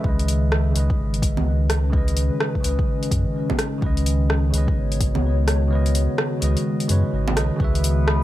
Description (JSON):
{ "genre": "future garage", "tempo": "127 BPM", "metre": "4/4", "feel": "swing 62% on 16ths", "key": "unclear", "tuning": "A4 = 440 Hz", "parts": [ { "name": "bell-like tine electric piano", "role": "accompaniment", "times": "0.0-8.2 s", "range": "C#3 to E5", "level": "-26 LUFS", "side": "right 2 dB", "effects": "sidechain pumping, low-pass filter, tape echo" }, { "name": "warbly tape-like pad", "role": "sustained chords", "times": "0.0-8.2 s", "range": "D#3 to C#5", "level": "-28 LUFS", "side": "left 3 dB", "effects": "chorus, built-in reverb, sidechain pumping" }, { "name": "warm sub bass", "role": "bass", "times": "0.0-8.2 s", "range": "G#1 to F#2", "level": "-21 LUFS", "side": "equal", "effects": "sidechain pumping" }, { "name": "electronic kick drum", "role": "drums", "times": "0.0-7.7 s", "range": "none", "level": "-23 LUFS", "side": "equal", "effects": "overdrive" }, { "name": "deep house drum kit", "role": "drums", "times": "0.2-8.2 s", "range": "bongos, cabasa, hi-hat, rim click", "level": "-26 LUFS", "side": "equal", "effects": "overdrive" }, { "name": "drifting glass-harmonics texture", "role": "texture", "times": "7.7-8.2 s", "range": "B3 to B4", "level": "-30 LUFS", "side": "left 3 dB", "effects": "chorus, built-in reverb" } ], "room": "light reverb, digital ambience", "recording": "echo-heavy mix", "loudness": "-18 LUFS", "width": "side -14 dB against mid", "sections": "0.0-8.2 A section", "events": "filter sweep on tine electric piano 0.0-8.2; kick drops out 5.7-7.6", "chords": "0.0 G#m; 7.6 C#m7" }